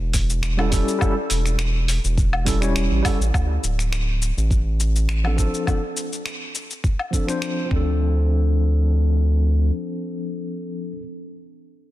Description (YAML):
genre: sunset chillout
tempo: 103 BPM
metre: 4/4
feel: swing 54% on 16ths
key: D minor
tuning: A4 = 439 Hz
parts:
  - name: round analog bass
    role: bass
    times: 0.0-9.7 s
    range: D1 to D2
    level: -19 LUFS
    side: equal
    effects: none
  - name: dusty soul sampler-style drum kit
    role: drums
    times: 0.1-7.5 s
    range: cabasa, finger snaps, hi-hat, woodblock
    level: -28 LUFS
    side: left 2 dB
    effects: overdrive, soft clipping on snare
  - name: electronic kick drum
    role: drums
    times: 0.1-7.8 s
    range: none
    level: -21 LUFS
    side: equal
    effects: overdrive
  - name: tine electric piano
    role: accompaniment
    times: 0.6-11.0 s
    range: F3 to C#5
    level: -26 LUFS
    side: moving between left 4 dB and right 4 dB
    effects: medium tremolo, auto-pan, low-pass filter, tape echo
room: light reverb, digital ambience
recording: dense, heavily limited modern master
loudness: -19 LUFS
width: side -15 dB against mid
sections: 0.0-3.3 A section; 3.3-8.0 B section; 8.0-10.3 C section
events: none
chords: 0.0 A7; 3.3 Dm7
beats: 0.43 | 1.01 1.59 2.17 2.76 | 3.34 3.92 4.50 5.09 | 5.67 6.25 6.83 7.42 | 8.00 8.58 9.16 9.75